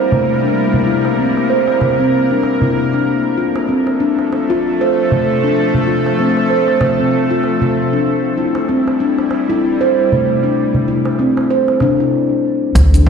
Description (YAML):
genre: organic downtempo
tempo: 96 BPM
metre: 4/4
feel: swing 58% on 16ths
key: unclear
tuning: A4 = 441 Hz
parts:
  - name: bowed-like drone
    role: sustained chords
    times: 0.0-13.1 s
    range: D3 to Bb4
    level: -19 LUFS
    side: equal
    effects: built-in reverb, sidechain pumping
  - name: steel tongue drum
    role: arpeggios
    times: 0.0-13.1 s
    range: A3 to C5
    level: -14 LUFS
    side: equal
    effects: low-pass filter, ping-pong delay
  - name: darbuka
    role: percussion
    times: 0.1-12.0 s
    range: none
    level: -21 LUFS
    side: equal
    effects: none
  - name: upright bass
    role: bass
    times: 12.8-13.1 s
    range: D2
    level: -9 LUFS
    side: equal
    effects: sidechain pumping
  - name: electronic hi-hat and cabasa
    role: drums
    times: 12.8-13.0 s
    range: none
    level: -28 LUFS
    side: equal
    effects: overdrive
  - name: electronic kick drum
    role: drums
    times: 12.8-13.1 s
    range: none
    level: -14 LUFS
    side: equal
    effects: overdrive
room: wet lush hall reverb, RT60 2.0 s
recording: played on a big sound system in a bare room, large studio reverb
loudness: -12 LUFS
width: side -6 dB against mid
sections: 0.0-12.8 A section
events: stop 12.1-12.8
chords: 0.0 Edim; 2.8 Dm; 7.8 Cadd9/G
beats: | 0.25 0.88 1.50 2.13 | 2.75 3.38 4.00 4.63 | 5.25 5.88 6.50 7.13 | 7.75 8.38 9.00 9.63 | 10.25 10.88 11.50 12.13 | 12.75